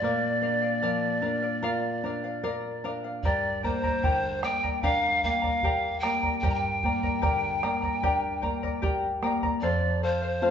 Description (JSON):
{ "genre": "andean folk, Andean ensemble", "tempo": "75 BPM", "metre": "4/4", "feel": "straight", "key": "G minor", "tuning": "A4 = 440 Hz", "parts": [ { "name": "breathy pan flute", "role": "melody", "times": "0.0-10.5 s", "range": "C5 to Bb5", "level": "-28 LUFS", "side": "equal", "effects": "none" }, { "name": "charango", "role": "accompaniment", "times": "0.0-10.5 s", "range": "G4 to Bb5", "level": "-30 LUFS", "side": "left 2 dB", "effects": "none" }, { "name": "nylon-string guitar", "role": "accompaniment", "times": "0.0-10.5 s", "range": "F2 to Bb4", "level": "-32 LUFS", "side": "equal", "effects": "none" }, { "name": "bombo", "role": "percussion", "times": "3.2-9.6 s", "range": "none", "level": "-32 LUFS", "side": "right 1 dB", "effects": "none" } ], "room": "wet large studio reverb, RT60 1.1 s", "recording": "band playing live in one room, nothing above 7.6 kHz", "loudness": "-24 LUFS", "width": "side -8 dB against mid", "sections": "0.0-9.6 A section", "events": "none", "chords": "0.0 Bb; 3.2 Gm; 9.6 F" }